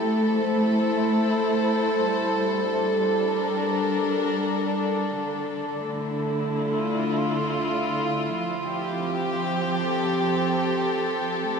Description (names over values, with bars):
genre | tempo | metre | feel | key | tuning
ambient | 57 BPM | 3/4 | straight | G dorian | A4 = 440 Hz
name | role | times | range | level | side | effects
warm chamber string section | solo | 0.0-11.6 s | D3 to C5 | -22 LUFS | equal | diffuse ambient delay
room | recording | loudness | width
wet cathedral reverb, RT60 6.3 s | cassette tape | -22 LUFS | side -6 dB against mid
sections
0.0-2.0 A section; 2.0-11.6 B section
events
none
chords
0.0 Am; 2.0 Gm; 5.2 Dm; 8.3 Fmaj9